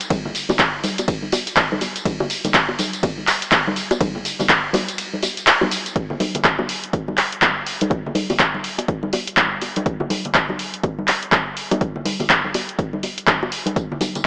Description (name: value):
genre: house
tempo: 123 BPM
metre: 4/4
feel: swing 60% on 16ths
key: none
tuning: none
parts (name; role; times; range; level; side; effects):
- punchy analog drum machine; drums; 0.0-14.2 s; handclaps, hi-hat, ride cymbal, tambourine; -18 LUFS; equal; none
- electronic kick drum; drums; 0.1-13.9 s; none; -23 LUFS; equal; none
- congas and bongos; percussion; 0.1-14.2 s; none; -24 LUFS; left 1 dB; none
room: light reverb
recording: small speaker sound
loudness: -17 LUFS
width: side -29 dB against mid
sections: 0.0-6.0 A section; 6.0-14.3 B section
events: drop 0.0-6.0; kick drops out 5.0-6.0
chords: none